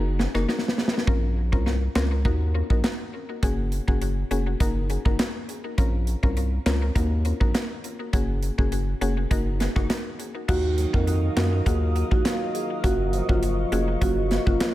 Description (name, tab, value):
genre	dancehall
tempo	102 BPM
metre	4/4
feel	straight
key	unclear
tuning	A4 = 440 Hz
part	mallet-like synth pluck	accompaniment	0.0-14.6 s	Gb3 to Bb4	-30 LUFS	left 2 dB	chorus, tape echo
part	round analog bass	bass	0.0-14.6 s	F1 to Gb2	-25 LUFS	equal	none
part	modern studio drum kit	drums	0.2-14.7 s	crash cymbal, handclaps, hi-hat, kick drum, rim click, snare drum	-25 LUFS	equal	none
part	marimba with medium mallets	melody	10.5-14.6 s	F4 to Bb4	-28 LUFS	right 2 dB	tape echo
part	glassy FM pad	sustained chords	10.8-14.7 s	Bb4 to Eb6	-33 LUFS	left 3 dB	ensemble chorus, built-in reverb, sidechain pumping
part	flamenco guitar	arpeggios	10.5-14.7 s	Gb2 to F4	-33 LUFS	right 3 dB	tape echo
room	studio ambience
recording	echo-heavy mix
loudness	-22 LUFS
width	side -15 dB against mid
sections	0.0-10.5 A section; 10.5-14.7 B section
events	break 0.0-1.1; drum fill 0.5-1.1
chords	0.0 Ebm/Gb; 1.1 Bbmadd9; 2.3 Ebm; 3.4 Gbadd9; 4.6 Ebm/Gb; 5.8 Bbmadd9; 7.0 Ebm; 8.1 Gbadd9; 9.3 Ebm/Gb; 10.5 Ebmadd9; 12.8 Gbmaj7